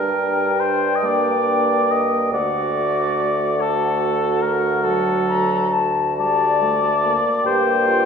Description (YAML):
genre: classical, slow romantic movement for wind quintet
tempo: 47 BPM (dotted quarters)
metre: 6/8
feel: rubato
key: unclear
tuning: A4 = 440 Hz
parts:
  - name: silver concert flute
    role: melody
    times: 0.0-8.1 s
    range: F#5 to Bb5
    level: -22 LUFS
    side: left 7 dB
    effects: none
  - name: mellow oboe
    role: second line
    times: 0.0-8.1 s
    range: A4 to Eb5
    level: -21 LUFS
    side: left 1 dB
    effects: none
  - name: bright clarinet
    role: accompaniment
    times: 0.0-8.1 s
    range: D4 to G4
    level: -28 LUFS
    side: right 8 dB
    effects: none
  - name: clear French horn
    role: accompaniment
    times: 0.0-8.1 s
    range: F#3 to Bb3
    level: -27 LUFS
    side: right 1 dB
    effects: none
  - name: mellow bassoon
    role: bass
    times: 0.0-8.1 s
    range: D2 to G2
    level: -23 LUFS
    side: right 3 dB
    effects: none
room: wet recital hall reverb, RT60 1.8 s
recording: recorded in a church or concert hall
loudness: -17 LUFS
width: side -6 dB against mid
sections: 0.0-8.1 A section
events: none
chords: 0.0 Gm; 2.3 D; 7.5 Gm